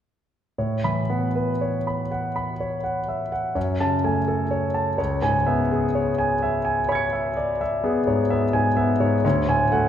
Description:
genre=classical, impressionist solo piano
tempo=38-44 BPM (dotted quarters)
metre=9/8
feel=rubato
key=A major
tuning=A4 = 440 Hz
part: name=clear grand piano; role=solo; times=0.6-9.9 s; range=C#2 to C#7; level=-20 LUFS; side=equal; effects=none
room=moderate concert hall reverb, RT60 2.4 s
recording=minimal, uncompressed stereo recording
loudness=-20 LUFS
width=side -9 dB against mid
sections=0.6-9.9 A section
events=none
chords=0.6 A69; 3.6 F#madd9; 5.0 C#m7; 9.2 Dmaj7#11

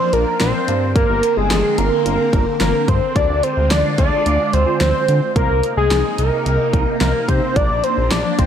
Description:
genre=synth-pop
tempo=109 BPM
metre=4/4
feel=straight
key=C minor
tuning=A4 = 440 Hz
part: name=fat analog lead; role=melody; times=0.0-8.5 s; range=Ab4 to D5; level=-18 LUFS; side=equal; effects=chorus, phaser, analog delay
part: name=phased string machine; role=sustained chords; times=0.0-8.5 s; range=C3 to F4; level=-23 LUFS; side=equal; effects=ensemble chorus, phaser
part: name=chorused synth bass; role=bass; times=0.1-8.5 s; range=G1 to D3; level=-20 LUFS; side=equal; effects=none
part: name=pop drum kit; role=drums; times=0.1-8.5 s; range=hi-hat, kick drum, snare drum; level=-20 LUFS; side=equal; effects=none
room=light reverb, digital ambience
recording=none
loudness=-14 LUFS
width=side -8 dB against mid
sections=0.0-8.5 A section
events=none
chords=0.0 Bb; 0.7 Gsus4; 3.2 Ddim; 5.4 Cm7; 7.6 Bb

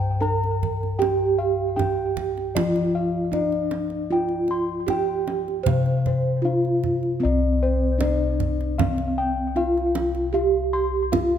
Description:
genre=Javanese gamelan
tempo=77 BPM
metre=4/4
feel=straight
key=C slendro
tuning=A4 = 436 Hz
part: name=gamelan-type bronze metallophone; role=melody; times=0.0-11.4 s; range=C4 to C5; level=-24 LUFS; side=right 3 dB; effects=none
part: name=gamelan-type bossed gongs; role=arpeggios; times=0.0-11.4 s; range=C5 to C6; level=-28 LUFS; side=left 3 dB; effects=tape echo
part: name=gamelan-type bossed gongs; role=bass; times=0.0-11.4 s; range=C2 to G4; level=-25 LUFS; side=left 2 dB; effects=none
part: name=kendang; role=percussion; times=0.2-11.3 s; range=none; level=-28 LUFS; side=right 6 dB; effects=none
room=light reverb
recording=close, detailed microphones, faint mains hum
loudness=-20 LUFS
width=side -9 dB against mid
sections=0.0-7.2 A section; 7.2-11.4 A section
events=none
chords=none

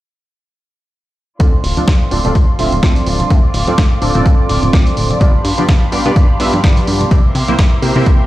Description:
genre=filtered disco house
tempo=126 BPM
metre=4/4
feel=swing 56% on 16ths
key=D minor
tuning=A4 = 441 Hz
part: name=funky polysynth comp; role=accompaniment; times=1.4-8.3 s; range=Bb3 to E5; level=-19 LUFS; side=equal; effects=chorus, phaser, sidechain pumping, low-pass filter
part: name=clear symphonic violin section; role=sustained chords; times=1.4-8.3 s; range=F4 to D6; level=-25 LUFS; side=equal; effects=sidechain pumping, low-pass filter
part: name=electric guitar with an envelope filter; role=riff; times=1.4-8.3 s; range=E3 to G4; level=-23 LUFS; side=right 1 dB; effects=sidechain pumping, low-pass filter
part: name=plucky analog bass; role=bass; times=1.4-8.2 s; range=D1 to C3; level=-18 LUFS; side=equal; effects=tube saturation, sidechain pumping, low-pass filter
part: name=dusty soul sampler-style drum kit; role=drums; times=1.4-8.2 s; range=hi-hat, snare drum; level=-21 LUFS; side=equal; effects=sidechain pumping on hats
part: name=electronic kick drum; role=drums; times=1.4-8.2 s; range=none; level=-12 LUFS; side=equal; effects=overdrive
part: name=tambourine and congas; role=percussion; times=1.4-8.3 s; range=none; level=-24 LUFS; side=right 2 dB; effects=sidechain pumping on perc, low-pass filter on perc
room=little or no reverb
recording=played on a big sound system in a bare room, stone room reverb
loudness=-10 LUFS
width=side -16 dB against mid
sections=1.4-8.3 A section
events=filter sweep 1.4-8.3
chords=1.4 Dm7; 5.2 G7; 7.1 C7

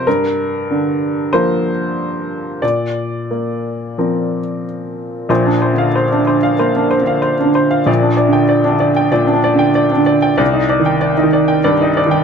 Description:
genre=neoclassical minimalist piano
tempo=94 BPM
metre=4/4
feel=rubato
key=unclear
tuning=A4 = 440 Hz
part: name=clear upright piano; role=solo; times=0.0-12.2 s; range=Bb1 to G5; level=-13 LUFS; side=equal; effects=none
room=light reverb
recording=none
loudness=-13 LUFS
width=side -6 dB against mid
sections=0.0-5.3 A section; 5.3-12.2 B section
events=none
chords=0.1 Gm7; 2.6 Bbadd9; 7.9 Gm/Bb; 10.4 Cmadd9

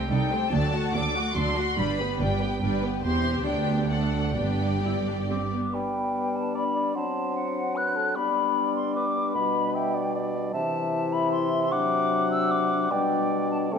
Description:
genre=classical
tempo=127-154 BPM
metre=3/4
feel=rubato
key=G major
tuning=A4 = 440 Hz
part: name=rich symphonic violin section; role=melody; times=0.0-5.3 s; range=F#5 to D6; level=-31 LUFS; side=left 3 dB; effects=none
part: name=rich symphonic violin section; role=second line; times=0.0-5.5 s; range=F#4 to F#5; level=-32 LUFS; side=left 2 dB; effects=none
part: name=rich chamber viola section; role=accompaniment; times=0.0-5.7 s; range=F#3 to G4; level=-31 LUFS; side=right 1 dB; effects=none
part: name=rich symphonic cello section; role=bass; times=0.0-5.6 s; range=C2 to G2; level=-30 LUFS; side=right 3 dB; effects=none
part: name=warm symphonic double bass section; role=bass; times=0.0-5.5 s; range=E1 to D2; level=-30 LUFS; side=right 3 dB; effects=none
part: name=mellow hollow silver concert flute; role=second line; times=5.3-13.8 s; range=F#5 to F#6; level=-27 LUFS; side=left 3 dB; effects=none
part: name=dark cor anglais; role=second line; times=5.7-13.8 s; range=A4 to F#5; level=-32 LUFS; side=right 3 dB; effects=none
part: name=clear bassoon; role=accompaniment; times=5.7-13.8 s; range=B2 to G3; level=-30 LUFS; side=right 1 dB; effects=none
part: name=mellow French horn section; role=sustained chords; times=5.7-13.8 s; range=E3 to E4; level=-29 LUFS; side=left 6 dB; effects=none
room=moderate scoring stage reverb, RT60 2.2 s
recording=dark, warm production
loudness=-23 LUFS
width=side -6 dB against mid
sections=0.0-5.8 A section; 5.8-13.8 B section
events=none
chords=0.0 Am7b5/C; 0.5 D; 1.8 G; 3.0 C/E; 3.5 G/D; 3.9 D; 4.4 G; 7.0 D7/F#; 8.2 G; 9.4 G/B; 10.5 Am/C; 11.7 D7/C; 12.9 G/B

